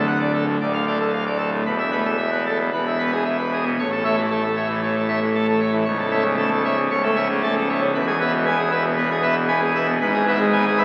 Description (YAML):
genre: classical, organ toccata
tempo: 115 BPM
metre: 4/4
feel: straight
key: A major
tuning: A4 = 440 Hz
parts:
  - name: pipe organ, full organ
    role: solo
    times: 0.0-10.8 s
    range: C#1 to A5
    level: -21 LUFS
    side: equal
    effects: none
room: wet church reverb, RT60 3.8 s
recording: very old 78 rpm record, vinyl crackle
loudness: -21 LUFS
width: mono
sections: 0.0-3.8 A section; 3.8-10.8 B section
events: none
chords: 0.0 D; 0.6 Dm; 1.6 Esus4; 2.7 E; 3.8 A; 5.9 A/C#; 7.9 E; 10.0 E/G#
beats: 0.06 0.58 1.11 | 1.64 2.18 2.71 3.25 | 3.78 4.30 4.82 5.34 | 5.87 6.38 6.90 7.43 | 7.95 8.47 8.98 9.49 | 10.01 10.53